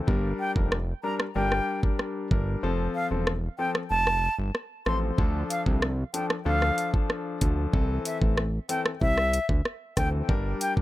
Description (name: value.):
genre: dancehall.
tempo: 94 BPM.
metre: 4/4.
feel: straight.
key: G dorian.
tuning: A4 = 437 Hz.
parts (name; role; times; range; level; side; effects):
warm concert grand piano; accompaniment; 0.0-10.8 s; E3 to Bb4; -31 LUFS; left 3 dB; sidechain pumping.
fat analog bass; bass; 0.1-10.8 s; E1 to D2; -28 LUFS; equal; none.
island pop drum kit; drums; 0.1-10.8 s; hi-hat, kick drum, rim click; -26 LUFS; equal; none.
silver concert flute; melody; 0.4-10.7 s; E5 to C6; -29 LUFS; equal; ping-pong delay.
room: little or no reverb.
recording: none.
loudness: -24 LUFS.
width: side -16 dB against mid.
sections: 0.0-10.8 A section.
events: break 0.0-5.2; kick muted 2.6-5.2.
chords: 0.1 Gm; 2.6 F; 5.2 Dm; 7.7 C6; 10.3 Gm.